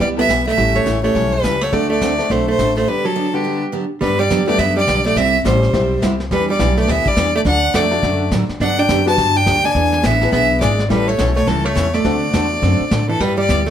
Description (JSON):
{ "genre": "country, western swing", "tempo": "209 BPM", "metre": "4/4", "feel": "swing 61% on 8ths", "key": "G major", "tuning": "A4 = 441 Hz", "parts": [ { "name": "clear fiddle", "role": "melody", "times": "0.0-13.7 s", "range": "G4 to A5", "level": "-18 LUFS", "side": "left 1 dB", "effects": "none" }, { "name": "archtop guitar, miked and amplified", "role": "second line", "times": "0.0-13.7 s", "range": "D3 to F#4", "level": "-21 LUFS", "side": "right 3 dB", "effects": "none" }, { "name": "picked steel-string acoustic guitar", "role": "accompaniment", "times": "0.0-13.6 s", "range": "C3 to B4", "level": "-22 LUFS", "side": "right 2 dB", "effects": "none" }, { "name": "upright bass", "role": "bass", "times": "0.0-13.7 s", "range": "G#1 to A2", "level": "-20 LUFS", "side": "left 1 dB", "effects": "none" }, { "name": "vintage brush drum kit", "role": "drums", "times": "0.0-13.7 s", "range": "brushed snare drum, hi-hat, kick drum, snare drum", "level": "-24 LUFS", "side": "equal", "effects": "none" }, { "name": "tack piano", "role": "accompaniment", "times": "0.2-12.8 s", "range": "G3 to D5", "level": "-24 LUFS", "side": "left 5 dB", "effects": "none" } ], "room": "wet club reverb, RT60 0.7 s", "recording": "none", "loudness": "-14 LUFS", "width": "side -9 dB against mid", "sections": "0.0-4.0 A section; 4.0-13.2 B section", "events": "break 2.9-4.0", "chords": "0.0 Em; 0.6 A7; 1.7 D7; 2.9 Gmaj7; 5.2 C; 6.3 Em7; 7.5 D; 8.6 Gmaj7; 9.8 E7; 10.9 A7; 12.1 D7", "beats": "0.00 0.29 | 0.58 0.86 1.15 1.44 | 1.72 2.01 2.30 2.58 | 2.87 3.16 3.44 3.73 | 4.02 4.30 4.59 4.88 | 5.16 5.45 5.74 6.02 | 6.31 6.59 6.88 7.17 | 7.46 7.74 8.03 8.32 | 8.60 8.89 9.18 9.46 | 9.75 10.04 10.33 10.61 | 10.90 11.19 11.48 11.76 | 12.05 12.34 12.63 12.92 | 13.20 13.49" }